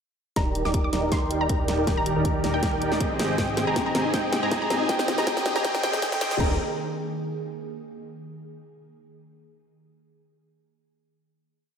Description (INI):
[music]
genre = future bass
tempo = 159 BPM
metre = 4/4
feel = swing 53% on 16ths, half-time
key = Eb major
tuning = A4 = 440 Hz
[part]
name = wide unison pluck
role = melody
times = 0.4-6.5 s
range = G5 to D6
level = -30 LUFS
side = equal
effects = sidechain pumping, analog delay
[part]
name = ethereal airy pad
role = sustained chords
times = 1.3-6.6 s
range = C3 to G5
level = -34 LUFS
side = right 1 dB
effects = ensemble chorus, built-in reverb, sidechain pumping
[part]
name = soft round pluck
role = arpeggios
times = 0.4-6.6 s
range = C4 to Bb4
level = -35 LUFS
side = left 4 dB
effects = none
[part]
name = dense compressed supersaw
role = riff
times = 0.4-6.5 s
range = C4 to Bb5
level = -27 LUFS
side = right 1 dB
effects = sidechain pumping, low-pass filter, analog delay
[part]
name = fat analog bass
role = bass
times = 0.4-6.6 s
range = Eb1 to Ab2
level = -33 LUFS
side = equal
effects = sidechain pumping
[part]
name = electronic kick drum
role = drums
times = 0.4-6.5 s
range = none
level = -28 LUFS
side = equal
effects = small room ambience
[part]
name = pop drum kit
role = drums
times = 0.4-6.5 s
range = crash cymbal, hi-hat, snare drum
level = -29 LUFS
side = equal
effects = small room ambience
[part]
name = riser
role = sound effects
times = 2.4-6.4 s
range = none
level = -36 LUFS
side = equal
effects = none
[sound]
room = wet lush hall reverb, RT60 1.6 s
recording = dreamy mix soaked in reverb, high-pass filter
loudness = -22 LUFS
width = side -7 dB against mid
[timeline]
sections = 0.4-6.4 build; 6.4-7.9 final chord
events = build-up 0.4-6.4; drum fill 0.4-6.4; filter sweep on supersaw synth 0.4-6.4; filter sweep on ambient pad 0.4-6.4; filter sweep 0.4-6.4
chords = 0.4 Ebmaj7; 3.2 Abmaj7; 4.9 Bb7sus4; 6.4 Ebmaj7